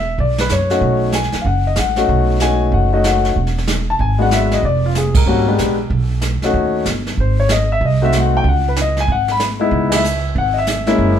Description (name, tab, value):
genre	jazz piano trio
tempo	189 BPM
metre	4/4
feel	swing 64% on 8ths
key	unclear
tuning	A4 = 439 Hz
part	warm concert grand piano	melody	0.0-11.2 s	G3 to B5	-17 LUFS	left 3 dB	none
part	upright bass	bass	0.0-11.2 s	E1 to F#2	-18 LUFS	right 1 dB	none
part	jazz brush drum kit	drums	0.2-11.2 s	brushed snare drum, hi-hat, kick drum, ride cymbal, snare drum	-21 LUFS	right 2 dB	none
room	moderate studio reverb, RT60 0.9 s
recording	band playing live in one room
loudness	-14 LUFS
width	side -9 dB against mid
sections	0.0-11.2 A section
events	band accent 5.1, 9.9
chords	0.0 Esus2; 0.8 B9; 3.4 E9; 4.6 Fdim7; 5.9 B9; 7.2 G#7b9; 8.4 C#m7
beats	0.19 0.50 | 0.82 1.14 1.46 1.78 | 2.09 2.41 2.73 3.05 | 3.37 3.68 4.00 4.32 | 4.64 4.95 5.27 5.59 | 5.91 6.22 6.54 6.86 | 7.18 7.49 7.81 8.13 | 8.45 8.76 9.08 9.40 | 9.71 10.03 10.35 10.67 | 10.98